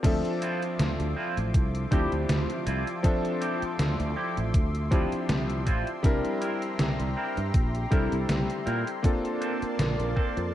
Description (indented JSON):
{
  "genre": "vaporwave",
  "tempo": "80 BPM",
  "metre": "4/4",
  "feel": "swing 55% on 16ths",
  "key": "D minor",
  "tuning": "A4 = 441 Hz",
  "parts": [
    { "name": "warm electric grand piano", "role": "accompaniment", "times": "0.0-10.5 s", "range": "F3 to E5", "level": "-31 LUFS", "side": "left 1 dB", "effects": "analog chorus, tape echo" },
    { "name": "lush unison pad", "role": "sustained chords", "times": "0.0-10.5 s", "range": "F3 to D6", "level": "-35 LUFS", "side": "equal", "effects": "chorus" },
    { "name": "sustaining fretless electric bass", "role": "bass", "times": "0.0-10.5 s", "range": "A1 to Bb2", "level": "-30 LUFS", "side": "equal", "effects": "tube saturation, wide subtle chorus" },
    { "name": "detuned 8-bit digital drum machine", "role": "drums", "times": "0.0-10.5 s", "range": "crash cymbal, hi-hat, snare drum", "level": "-31 LUFS", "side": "equal", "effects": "overdrive, gated reverb" },
    { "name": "electronic kick drum", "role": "drums", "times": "0.0-10.3 s", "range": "none", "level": "-24 LUFS", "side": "equal", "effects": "overdrive" },
    { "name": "clean electric guitar", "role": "riff", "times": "0.4-10.4 s", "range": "C4 to Bb4", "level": "-36 LUFS", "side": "right 2 dB", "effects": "lush chorus, tape echo" }
  ],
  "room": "light reverb",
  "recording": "none",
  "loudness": "-25 LUFS",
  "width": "side -12 dB against mid",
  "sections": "0.0-10.5 A section",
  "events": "none",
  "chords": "0.0 Dm9; 6.0 C7; 9.0 Bbmaj9"
}